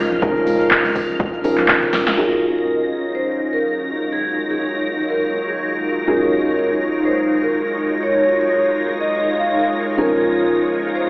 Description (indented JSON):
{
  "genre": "deep house",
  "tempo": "123 BPM",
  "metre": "4/4",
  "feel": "swing 57% on 16ths",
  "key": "unclear",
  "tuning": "A4 = 440 Hz",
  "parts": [
    { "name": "felt-muted upright piano", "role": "stabs", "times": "0.0-11.1 s", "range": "F3 to Bb4", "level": "-20 LUFS", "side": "equal", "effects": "sidechain pumping, low-pass filter, tape echo" },
    { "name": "organ-like FM bass", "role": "bass", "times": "0.0-2.0 s", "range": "Bb1 to Db2", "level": "-29 LUFS", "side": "equal", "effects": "sidechain pumping" },
    { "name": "granular cloud pad", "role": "texture", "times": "0.0-11.1 s", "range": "Db4 to F5", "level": "-24 LUFS", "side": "equal", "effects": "built-in reverb, sidechain pumping" },
    { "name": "string machine, violins", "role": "texture", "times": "0.0-11.1 s", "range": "F6 to Bb6", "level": "-28 LUFS", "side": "equal", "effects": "ensemble chorus, sidechain pumping" },
    { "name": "deep house drum kit", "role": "drums", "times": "0.1-2.2 s", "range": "handclaps, hi-hat, shaker, snare drum", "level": "-18 LUFS", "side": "equal", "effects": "none" },
    { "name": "electronic kick drum", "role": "drums", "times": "0.2-1.8 s", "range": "none", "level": "-24 LUFS", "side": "equal", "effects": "none" },
    { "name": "congas", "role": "percussion", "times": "0.2-2.0 s", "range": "none", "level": "-35 LUFS", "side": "equal", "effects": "none" },
    { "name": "vibraphone with medium mallets", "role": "melody", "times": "2.2-11.1 s", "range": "Ab4 to F5", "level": "-21 LUFS", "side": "equal", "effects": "vintage 12-bit sampler grit, tape echo" },
    { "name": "soft string machine", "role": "sustained chords", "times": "2.7-11.1 s", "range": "Gb3 to Db5", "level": "-23 LUFS", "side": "equal", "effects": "ensemble chorus, sidechain pumping" }
  ],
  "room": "moderate plate reverb, RT60 1.7 s",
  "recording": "played on a big sound system in a bare room, stone room reverb, vinyl crackle, telephone sound",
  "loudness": "-16 LUFS",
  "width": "side -26 dB against mid",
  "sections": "0.0-2.2 A section; 2.2-11.1 B section",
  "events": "drum fill 1.9; band accent 2.1",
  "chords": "0.0 Db69; 2.2 Ebm11; 10.0 Db69",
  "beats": "| 0.22 0.71 1.20 1.69 | 2.17 2.66 3.15 3.64 | 4.12 4.61 5.10 5.59 | 6.08 6.56 7.05 7.54 | 8.03 8.52 9.00 9.49 | 9.98 10.47 10.95"
}